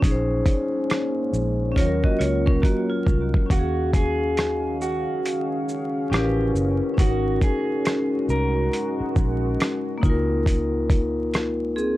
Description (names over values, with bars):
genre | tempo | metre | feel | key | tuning
lo-fi hip hop | 69 BPM | 4/4 | swing 63% on 16ths | Eb dorian | A4 = 444 Hz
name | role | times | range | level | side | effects
vibraphone with medium hard mallets | accompaniment | 0.0-12.0 s | Gb3 to F5 | -25 LUFS | left 2 dB | low-pass filter
deep dark ambient pad | sustained chords | 0.0-10.5 s | Eb3 to F5 | -31 LUFS | right 1 dB | chorus, built-in reverb, low-pass filter
vintage muted fingered electric bass | bass | 0.0-12.0 s | Gb1 to Eb2 | -26 LUFS | equal | none
dusty soul sampler-style drum kit | drums | 0.0-12.0 s | hi-hat, kick drum, rim click, shaker | -20 LUFS | equal | overdrive
vibraphone with hard mallets | second line | 1.8-3.5, 11.8-12.0 s | Bb3 to Eb5 | -27 LUFS | right 3 dB | low-pass filter, tape echo
electric guitar at the edge of break-up | melody | 3.5-10.4 s | Gb4 to Bb4 | -28 LUFS | right 1 dB | spring reverb, low-pass filter
room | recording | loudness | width
little or no reverb | dry, gritty hardware recording, vinyl crackle | -20 LUFS | side -16 dB against mid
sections
0.0-3.5 A section; 3.5-12.0 B section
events
drum fill 1.8-3.5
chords
0.0 Bbm11; 1.8 Ebm9; 3.5 Ebm11; 6.1 A9; 7.0 Ab9sus4; 10.0 Dbmaj13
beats
| 0.02 0.89 1.76 2.63 | 3.50 4.37 5.24 6.11 | 6.98 7.85 8.72 9.59 | 10.46 11.33